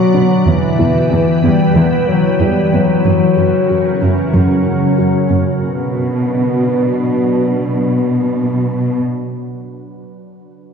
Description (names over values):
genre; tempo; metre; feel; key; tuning
cinematic; 93 BPM; 4/4; straight; B harmonic minor; A4 = 440 Hz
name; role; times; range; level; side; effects
dark French horn section; sustained chords; 0.0-9.0 s; E3 to B3; -16 LUFS; left 3 dB; low-pass filter
soft additive organ-like pad; sustained chords; 0.0-9.0 s; B2 to G5; -17 LUFS; right 1 dB; ensemble chorus, built-in reverb, low-pass filter
soft round pluck; arpeggios; 0.1-5.5 s; E3 to F#4; -21 LUFS; right 1 dB; none
dark symphonic cello section; bass; 0.2-9.0 s; E2 to B2; -18 LUFS; right 2 dB; none
room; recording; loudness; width
wet recital hall reverb, RT60 1.7 s; heard from further back in the room; -12 LUFS; side -6 dB against mid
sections
0.0-5.6 A section; 5.6-8.2 B section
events
filter sweep 0.0-5.6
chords
0.5 Em; 3.0 F#; 5.6 Bm